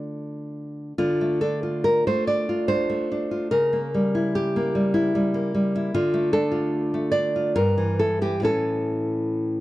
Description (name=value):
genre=romantic piece for solo classical guitar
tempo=72 BPM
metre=3/4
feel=uneven beats, rubato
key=D minor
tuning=A4 = 442 Hz
part: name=nylon-string guitar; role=solo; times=0.0-9.6 s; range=G2 to D5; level=-21 LUFS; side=equal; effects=none
room=studio reverb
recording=dry, close 1970s-style studio recording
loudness=-21 LUFS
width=side -17 dB against mid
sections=1.0-9.6 A section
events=none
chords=0.0 Dm; 3.5 C#dim7; 5.9 Dm; 7.6 Edim/G; 8.5 A